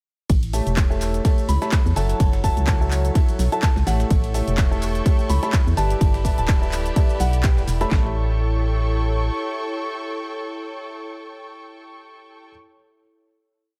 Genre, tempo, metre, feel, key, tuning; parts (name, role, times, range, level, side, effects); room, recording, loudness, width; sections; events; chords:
piano house; 126 BPM; 4/4; swing 56% on 16ths; A mixolydian; A4 = 440 Hz
organ-like FM bass; bass; 0.3-9.3 s; D1 to E2; -24 LUFS; equal; sidechain pumping
breakbeat sampler-style drum kit; drums; 0.3-7.9 s; hi-hat, snare drum; -41 LUFS; equal
house drum kit; drums; 0.3-8.0 s; handclaps, kick drum, snare drum; -21 LUFS; equal
house drum kit; drums; 0.3-7.9 s; handclaps, hi-hat, ride cymbal, shaker; -34 LUFS; equal; dub echo
airy breathy pad; texture; 0.3-12.5 s; E4 to D5; -36 LUFS; equal; chorus, sidechain pumping
clear upright piano; riff; 0.5-12.5 s; F#3 to A5; -31 LUFS; equal; sidechain pumping, dub echo
soft synth bell; melody; 1.5-7.9 s; F#5 to B5; -32 LUFS; equal; chorus, dub echo
clear studio violin section; sustained chords; 4.1-12.5 s; G4 to C#6; -36 LUFS; equal; sidechain pumping
little or no reverb; echo-heavy mix; -21 LUFS; mono
0.3-7.9 drop; 7.9-11.7 final chord
drop 0.3-7.9
0.3 A7; 2.0 F#m7; 3.9 A7; 5.8 G69; 7.9 A7